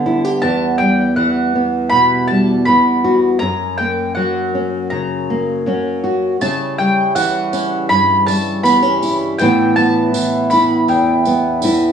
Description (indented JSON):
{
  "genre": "acoustic folk duo or small band",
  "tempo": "80 BPM",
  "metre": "4/4",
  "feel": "straight",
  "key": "unclear",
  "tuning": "A4 = 440 Hz",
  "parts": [
    { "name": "nylon-string guitar", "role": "accompaniment", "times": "0.0-11.9 s", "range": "E2 to G4", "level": "-15 LUFS", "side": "equal", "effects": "none" },
    { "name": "mandolin", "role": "melody", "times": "0.4-11.9 s", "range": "F#5 to B5", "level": "-16 LUFS", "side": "equal", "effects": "none" },
    { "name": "mellow accordion", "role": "sustained chords", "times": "6.4-11.9 s", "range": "A2 to C#5", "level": "-23 LUFS", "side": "right 1 dB", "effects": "none" },
    { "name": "tambourine", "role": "percussion", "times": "6.4-11.8 s", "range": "none", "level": "-29 LUFS", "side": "right 4 dB", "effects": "none" }
  ],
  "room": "moderate studio reverb, RT60 0.7 s",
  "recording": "worn, warbling old tape, cassette tape, warbly pitch drift, studio reverb",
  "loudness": "-13 LUFS",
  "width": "side -7 dB against mid",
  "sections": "0.0-11.9 A section",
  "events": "none",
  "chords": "0.4 Emadd9; 3.4 F#; 6.4 C#dim; 9.4 Asus2"
}